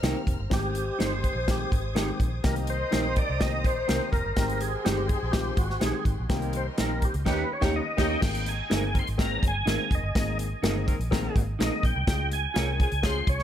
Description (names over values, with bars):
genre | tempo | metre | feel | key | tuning
uptempo 1960s-style soul | 124 BPM | 4/4 | straight | Ab major | A4 = 440 Hz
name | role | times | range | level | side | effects
mellow saxophone section | second line | 0.0-13.2 s | Eb3 to Eb5 | -38 LUFS | equal | none
warm studio string section | second line | 0.0-8.2 s | G4 to Ab6 | -39 LUFS | left 2 dB | tape echo
warm upright piano | accompaniment | 0.0-13.3 s | Eb3 to Bb4 | -34 LUFS | left 6 dB | none
electric guitar through a small old amp | stabs | 0.0-12.7 s | Eb4 to Db5 | -34 LUFS | right 5 dB | none
vintage muted fingered electric bass | bass | 0.0-13.4 s | F1 to Eb2 | -30 LUFS | equal | none
natural country drum kit | drums | 0.0-13.4 s | crash cymbal, hi-hat, kick drum, snare drum | -27 LUFS | equal | none
tonewheel organ | melody | 0.5-13.4 s | Gb4 to C6 | -31 LUFS | equal | overdrive, chorus vibrato, slow rotary speaker, tape echo
room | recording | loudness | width
light reverb | none | -24 LUFS | side -10 dB against mid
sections
0.0-8.2 A section; 8.2-13.4 B section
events
tonewheel organ solo 0.0-8.2; band accent 7.3-8.2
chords
0.0 Cm7; 0.5 Abmaj7; 2.4 Cm7; 4.4 Abmaj7; 6.3 Cm7; 7.3 Eb7; 8.2 Abadd9; 12.1 Db